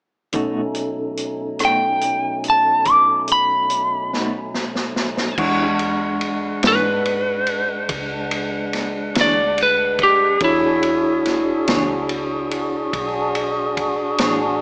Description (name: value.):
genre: slow blues.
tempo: 48 BPM (dotted quarters).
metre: 12/8.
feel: straight.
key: E mixolydian.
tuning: A4 = 440 Hz.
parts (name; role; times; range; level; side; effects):
clean electric guitar; accompaniment; 0.3-14.5 s; B2 to C#5; -27 LUFS; equal; tremolo.
overdriven tine electric piano; accompaniment; 0.3-14.6 s; B2 to C#6; -29 LUFS; equal; medium tremolo.
tonewheel organ; sustained chords; 0.3-14.6 s; B2 to F#5; -28 LUFS; equal; slow rotary speaker.
vintage drum kit; drums; 0.3-14.4 s; crash cymbal, hi-hat, kick drum, ride cymbal, rim click, snare drum; -27 LUFS; equal; none.
lightly driven lead guitar; melody; 1.6-12.9 s; E4 to D6; -20 LUFS; equal; none.
vintage muted fingered electric bass; bass; 5.4-14.6 s; A1 to G#2; -37 LUFS; equal; none.
room: light reverb.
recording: small speaker sound.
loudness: -19 LUFS.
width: mono.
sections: 0.3-5.4 A section; 5.4-14.6 B section.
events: drum fill 4.1-5.4; lead electric guitar solo 5.4-14.6.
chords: 0.3 B7; 5.4 E13.